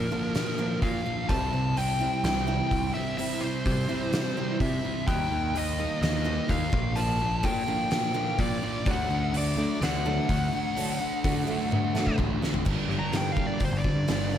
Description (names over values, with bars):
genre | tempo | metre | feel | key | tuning
quiet-loud alternative rock | 127 BPM | 4/4 | straight | G minor | A4 = 438 Hz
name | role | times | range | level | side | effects
fuzz lead guitar | melody | 0.0-14.4 s | Bb4 to Bb5 | -31 LUFS | left 2 dB | distortion
thick fuzz guitar | riff | 0.0-14.4 s | G2 to Eb4 | -30 LUFS | equal | distortion, slapback echo
growling picked electric bass | bass | 0.0-14.4 s | G1 to D3 | -31 LUFS | equal | overdrive
picked steel-string acoustic guitar | arpeggios | 0.1-14.4 s | G2 to E4 | -36 LUFS | right 3 dB | tape echo
oversized low-tuned drum kit | drums | 0.3-14.2 s | crash cymbal, hi-hat, kick drum, snare drum, toms | -30 LUFS | equal | none
room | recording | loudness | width
moderate lush hall reverb, RT60 1.6 s, studio ambience | big arena sound | -25 LUFS | side -10 dB against mid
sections
0.0-12.7 A section; 12.7-14.4 B section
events
half time 0.0-12.7; drum fill 11.7-12.7; lead electric guitar solo 12.7-14.4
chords
0.0 Bb; 1.3 C; 5.1 Eb; 6.7 Bb; 8.9 D; 12.7 Gm